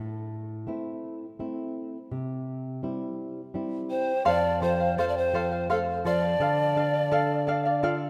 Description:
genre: andean folk.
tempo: 84 BPM.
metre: 3/4.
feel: straight.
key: unclear.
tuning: A4 = 439 Hz.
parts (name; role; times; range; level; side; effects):
nylon-string guitar; accompaniment; 0.0-8.1 s; F2 to A4; -34 LUFS; equal; none.
breathy bright polished pan flute; melody; 3.9-7.9 s; A4 to D5; -29 LUFS; equal; none.
breathy mellow large quena; second line; 3.9-7.9 s; F5 to A5; -36 LUFS; equal; none.
charango; accompaniment; 4.3-8.1 s; A4 to F5; -30 LUFS; equal; none.
room: wet lush hall reverb, RT60 2.7 s.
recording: rough home demo mix.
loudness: -28 LUFS.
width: mono.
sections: 0.0-4.3 A section; 4.3-8.1 B section.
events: none.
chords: 0.0 Am; 2.1 C; 4.3 F; 6.4 Dm.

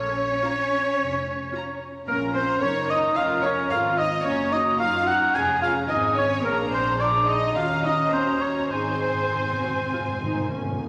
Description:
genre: quick classical-period movement for symphony orchestra.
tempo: 108 BPM.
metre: 4/4.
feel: uneven beats, rubato.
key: unclear.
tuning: A4 = 441 Hz.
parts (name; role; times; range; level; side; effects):
rich studio violin section; second line; 0.0-10.5 s; Bb4 to Ab5; -32 LUFS; equal; none.
warm oboe; second line; 0.0-10.5 s; Bb4 to Ab5; -26 LUFS; equal; none.
rich studio cello section; bass; 0.0-10.5 s; Bb3 to Ab4; -33 LUFS; equal; none.
rich studio double bass section; bass; 0.0-10.8 s; F1 to Gb2; -36 LUFS; equal; none.
clear studio violin section; melody; 0.4-10.9 s; Ab5 to Bb5; -38 LUFS; equal; none.
dark studio viola section; accompaniment; 0.4-10.9 s; Bb3 to Bb4; -33 LUFS; equal; none.
timpani; percussion; 8.7-10.9 s; Ab2; -35 LUFS; equal; none.
room: wet scoring stage reverb, RT60 1.9 s.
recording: vinyl crackle.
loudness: -23 LUFS.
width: mono.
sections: 0.0-10.9 A section.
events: timpani fill 8.7-10.9.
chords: 0.0 Bbm; 4.3 Ebm/Gb; 5.3 Db/F; 6.5 Bb7; 7.6 Ebm7; 8.7 Ab.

